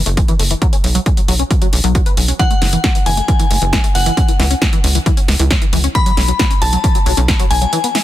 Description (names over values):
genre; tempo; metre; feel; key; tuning
uplifting trance; 135 BPM; 4/4; straight; unclear; A4 = 440 Hz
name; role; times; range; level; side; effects
tight sequencer bass; bass; 0.0-7.7 s; F#1 to C#2; -16 LUFS; equal; sidechain pumping
tight sequenced synth; arpeggios; 0.1-8.0 s; E3 to B4; -22 LUFS; left 2 dB; chorus, phaser, sidechain pumping, tape echo
techno drum kit; drums; 0.1-8.0 s; hi-hat, snare drum; -19 LUFS; equal; overdrive
electronic kick drum; drums; 0.2-7.4 s; none; -15 LUFS; equal; overdrive
glassy synth bell; second line; 2.4-8.0 s; F#5 to B5; -19 LUFS; left 3 dB; chorus, tape echo
room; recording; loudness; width
little or no reverb; dense, heavily limited modern master; -12 LUFS; side -13 dB against mid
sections
0.0-8.0 A section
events
none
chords
0.0 F#7(no3); 0.6 B5; 2.4 F#7(no3); 4.2 C#m; 6.0 B5